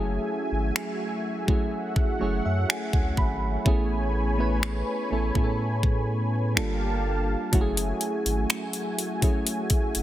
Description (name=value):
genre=contemporary R&B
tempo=62 BPM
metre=4/4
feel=straight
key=F# minor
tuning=A4 = 440 Hz
part: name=mellow FM electric piano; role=accompaniment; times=0.0-10.0 s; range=F#3 to B5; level=-29 LUFS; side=right 1 dB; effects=chorus
part: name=warm analog pad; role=sustained chords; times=0.0-10.0 s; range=A3 to B5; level=-32 LUFS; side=left 1 dB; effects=chorus
part: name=warm sub bass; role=bass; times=0.0-10.0 s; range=F#1 to A2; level=-28 LUFS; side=equal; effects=none
part: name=trap drum kit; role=drums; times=0.8-10.0 s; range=finger snaps, hi-hat, kick drum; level=-25 LUFS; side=equal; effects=soft clipping on snare
room=light reverb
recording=dense, heavily limited modern master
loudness=-23 LUFS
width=side -13 dB against mid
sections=0.0-10.0 A section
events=FM electric piano fill 1.7-3.7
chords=0.0 F#m9; 3.7 Amaj9; 6.6 Gm9; 7.5 F#m9